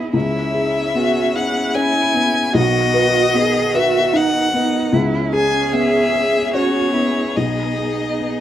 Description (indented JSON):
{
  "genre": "neoclassical piano and strings",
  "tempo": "75 BPM",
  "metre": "3/4",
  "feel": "rubato",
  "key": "C# minor",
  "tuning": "A4 = 440 Hz",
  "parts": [
    { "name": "rich cello", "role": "second line", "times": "0.0-8.4 s", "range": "D#4 to G#4", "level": "-21 LUFS", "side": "right 6 dB", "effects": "none" },
    { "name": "felt-muted upright piano", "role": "accompaniment", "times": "0.0-8.4 s", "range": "B1 to B4", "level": "-20 LUFS", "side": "left 2 dB", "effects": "none" },
    { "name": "rich chamber string section", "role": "sustained chords", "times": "0.0-8.4 s", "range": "D#3 to D#5", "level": "-28 LUFS", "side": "equal", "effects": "none" },
    { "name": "rich violin", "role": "melody", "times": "0.1-8.4 s", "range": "C#5 to G#5", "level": "-19 LUFS", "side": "left 3 dB", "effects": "none" }
  ],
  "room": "studio reverb",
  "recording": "rough home demo mix",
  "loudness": "-15 LUFS",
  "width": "side -11 dB against mid",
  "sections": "0.0-8.4 A section",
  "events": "none",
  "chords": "0.1 C#m7; 2.6 B; 4.9 C#m7; 7.4 G#m/B"
}